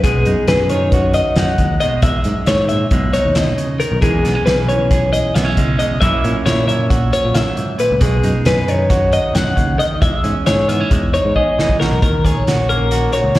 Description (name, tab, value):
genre	math rock and midwest emo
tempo	270 BPM (eighths)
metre	9/8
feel	straight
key	E lydian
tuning	A4 = 440 Hz
part	clean electric guitar	accompaniment	0.0-13.4 s	E2 to G#4	-20 LUFS	right 3 dB	none
part	twelve-string electric guitar	arpeggios	0.0-13.4 s	G#4 to F#5	-18 LUFS	left 2 dB	spring reverb, slapback echo
part	picked electric bass	bass	0.0-13.4 s	A#1 to A#2	-18 LUFS	equal	none
part	loose indie drum kit	drums	0.0-13.4 s	hi-hat, kick drum, snare drum	-19 LUFS	equal	none
room	little or no reverb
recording	live gig heard through the venue's PA, recital hall reverb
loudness	-13 LUFS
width	side -16 dB against mid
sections	0.0-12.0 A section; 12.0-13.4 B section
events	drum fill 11.3-12.0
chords	0.0 B6; 2.0 E6; 2.9 B6; 4.0 E6; 6.0 F#7; 8.0 B6; 10.0 E6; 10.9 Emaj7; 12.0 D#m7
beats	| 0.03 0.25 0.47 0.69 0.92 1.14 1.36 1.58 1.80 | 2.02 2.25 2.47 2.69 2.91 3.13 3.35 3.58 3.80 | 4.02 4.24 4.46 4.68 4.91 5.13 5.35 5.57 5.79 | 6.02 6.24 6.46 6.68 6.90 7.13 7.35 7.57 7.79 | 8.01 8.24 8.46 8.68 8.90 9.12 9.35 9.57 9.79 | 10.01 10.23 10.46 10.68 10.90 11.12 11.34 11.57 11.79 | 12.01 12.23 12.46 12.68 12.90 13.12 13.34